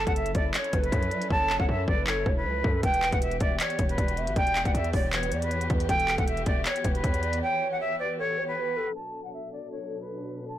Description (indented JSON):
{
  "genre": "hip hop, trap",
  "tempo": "157 BPM",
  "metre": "4/4",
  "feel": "half-time",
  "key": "unclear",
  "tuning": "A4 = 440 Hz",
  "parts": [
    { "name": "jazz flute", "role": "melody", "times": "0.0-10.6 s", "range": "B4 to A5", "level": "-29 LUFS", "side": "equal", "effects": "digital delay" },
    { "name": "gliding portamento lead", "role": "second line", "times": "0.0-8.9 s", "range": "A4 to E5", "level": "-33 LUFS", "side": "right 3 dB", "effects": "chorus, digital delay" },
    { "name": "dark studio string section", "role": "sustained chords", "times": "0.0-10.6 s", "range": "B2 to A4", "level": "-36 LUFS", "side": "left 2 dB", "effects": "none" },
    { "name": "distorted 808-style bass", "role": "bass", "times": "0.0-7.4 s", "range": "E1 to F#2", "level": "-31 LUFS", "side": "equal", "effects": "distortion" },
    { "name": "trap drum kit", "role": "drums", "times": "0.1-7.4 s", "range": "handclaps, hi-hat, kick drum", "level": "-27 LUFS", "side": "equal", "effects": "none" }
  ],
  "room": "digital ambience",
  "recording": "blown-out, overdriven recording, overdrive, low-pass filter",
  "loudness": "-24 LUFS",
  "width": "side -12 dB against mid",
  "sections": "0.0-8.9 A section; 8.9-10.6 B section",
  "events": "hi-hats muted 1.3-2.8; break 7.4-8.9",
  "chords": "0.0 F#m7; 2.8 Emadd9; 8.9 Bm7"
}